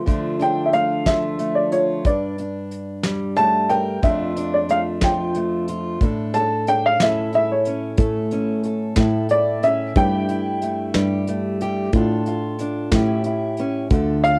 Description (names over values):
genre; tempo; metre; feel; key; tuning
acoustic folk duo or small band; 61 BPM (dotted quarters); 6/8; straight; D harmonic minor; A4 = 439 Hz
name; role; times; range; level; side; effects
fingerpicked acoustic archtop guitar; accompaniment; 0.0-14.4 s; F2 to Bb4; -25 LUFS; equal; cassette tape
soft brush drum kit; drums; 0.1-14.4 s; hi-hat, kick drum, snare drum; -24 LUFS; equal; cassette tape
warm upright piano; melody; 0.4-14.4 s; C#5 to A5; -22 LUFS; equal; cassette tape
fingered electric bass; bass; 8.0-14.4 s; D2 to A2; -25 LUFS; equal; none
room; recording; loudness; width
light reverb; home recording on cassette; -21 LUFS; mono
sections
0.1-14.4 A section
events
upright piano solo 0.1-14.4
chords
0.1 Dm; 2.1 Gmadd9; 4.0 Dm/F; 6.0 Asus4; 7.0 A; 10.0 Emadd11/G; 11.9 Dm/A; 12.9 A7